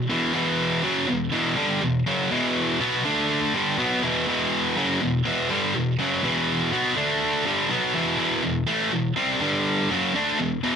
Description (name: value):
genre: metal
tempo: 122 BPM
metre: 4/4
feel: straight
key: E minor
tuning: A4 = 440 Hz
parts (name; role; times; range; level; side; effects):
- scooped high-gain guitar; solo; 0.0-10.8 s; E2 to D4; -21 LUFS; equal; distortion
room: little or no reverb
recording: dry, close 1970s-style studio recording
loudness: -21 LUFS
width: side -7 dB against mid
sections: 0.0-8.2 A section; 8.2-10.8 B section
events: half time 0.0-8.2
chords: 0.0 Em; 3.0 D5; 3.5 Em; 7.0 D5; 7.5 Em; 9.4 G5; 9.9 E5